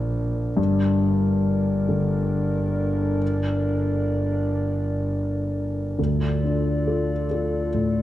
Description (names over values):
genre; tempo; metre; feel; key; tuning
neoclassical piano and strings; 43-48 BPM (dotted quarters); 6/8; rubato; unclear; A4 = 438 Hz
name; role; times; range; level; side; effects
dark grand piano; accompaniment; 0.0-8.0 s; D2 to A4; -23 LUFS; left 1 dB; none
dark analog pad; sustained chords; 0.0-8.0 s; D4 to D5; -28 LUFS; equal; chorus
rich double bass; bass; 0.0-6.0 s; G1 to Bb1; -26 LUFS; right 1 dB; none
room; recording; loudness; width
moderate scoring stage reverb, RT60 2.0 s; dark, warm production; -21 LUFS; side -14 dB against mid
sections
0.0-6.0 A section; 6.0-8.0 B section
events
none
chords
0.0 Bb; 0.6 Gm; 6.0 Dm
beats
| 0.58 1.87 | 3.21 4.60 | 5.98 7.29